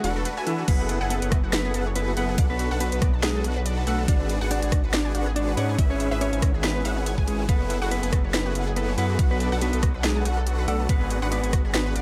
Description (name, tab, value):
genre	future bass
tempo	141 BPM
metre	4/4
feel	swing 55% on 16ths, half-time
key	F# minor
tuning	A4 = 442 Hz
part	mellow electric guitar	melody	0.0-12.0 s	E3 to D5	-32 LUFS	equal	tremolo, sidechain pumping, digital delay
part	rich studio string section	sustained chords	0.0-0.7 s	D3 to F#4	-42 LUFS	equal	none
part	unison pluck	arpeggios	0.0-12.0 s	E5 to G#5	-39 LUFS	equal	sidechain pumping, dub echo
part	unison pluck	arpeggios	0.0-12.0 s	E4 to A5	-38 LUFS	equal	cassette tape, sidechain pumping, dub echo
part	supersaw chords	riff	0.0-12.0 s	C#4 to G#5	-34 LUFS	equal	sidechain pumping
part	detuned saw bass	bass	0.0-12.0 s	E1 to G#2	-29 LUFS	equal	chorus, sidechain pumping
part	trap drum kit	drums	0.0-12.0 s	crash cymbal, hi-hat, rim click, snare drum	-31 LUFS	equal	overdrive
part	electronic kick drum	drums	0.7-11.6 s	none	-24 LUFS	equal	none
room	digital ambience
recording	none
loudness	-24 LUFS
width	mono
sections	0.7-12.0 A section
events	drop 0.7-12.0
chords	0.0 E9sus4; 0.7 F#m11; 2.4 Bm7; 4.1 G#m7b5; 5.8 C#m7/G#; 7.5 F#m11; 9.2 Bm7; 10.9 G#m7b5